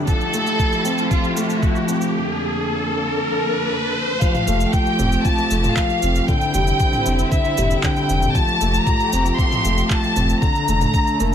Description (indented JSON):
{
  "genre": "piano and strings electronica",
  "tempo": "116 BPM",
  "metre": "4/4",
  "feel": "straight",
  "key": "F major",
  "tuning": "A4 = 436 Hz",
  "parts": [
    { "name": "dark chamber string section", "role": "sustained chords", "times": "0.0-11.3 s", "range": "F2 to A4", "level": "-26 LUFS", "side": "right 1 dB", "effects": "sidechain pumping, low-pass filter" },
    { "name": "felt-muted upright piano", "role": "riff", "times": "0.0-11.3 s", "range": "D3 to C4", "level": "-23 LUFS", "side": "left 1 dB", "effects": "tape echo" },
    { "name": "riser", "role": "sound effects", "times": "0.0-4.2 s", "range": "none", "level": "-25 LUFS", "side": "equal", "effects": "none" },
    { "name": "rich studio violin section", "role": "melody", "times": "0.1-11.3 s", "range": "E4 to C6", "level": "-22 LUFS", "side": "left 1 dB", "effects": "none" },
    { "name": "electronic kick drum", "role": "drums", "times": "0.1-11.0 s", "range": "none", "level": "-20 LUFS", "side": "equal", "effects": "none" },
    { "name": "minimal click drum kit", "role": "drums", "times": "0.1-11.3 s", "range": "handclaps, shaker, toms", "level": "-27 LUFS", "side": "right 1 dB", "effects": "high-pass filter on perc, high-pass filter on toms, high-pass filter on snare" },
    { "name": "warm sub bass", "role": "bass", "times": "4.5-11.3 s", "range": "F1", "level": "-21 LUFS", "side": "equal", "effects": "sidechain pumping" }
  ],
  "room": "light reverb, small room ambience",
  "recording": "none",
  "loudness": "-16 LUFS",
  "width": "side -9 dB against mid",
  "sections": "0.0-4.2 A section; 4.2-11.3 B section",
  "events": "build-up 0.0-4.2; riser 0.0-4.2; filter sweep on violin section 0.0-4.2; break 2.1-4.2; drop 4.2-11.3",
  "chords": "0.1 Fadd9; 2.1 Bbmaj7/F; 4.2 Fadd9; 6.3 Cadd9/F; 8.4 Fadd9; 10.4 Bbmaj7/F"
}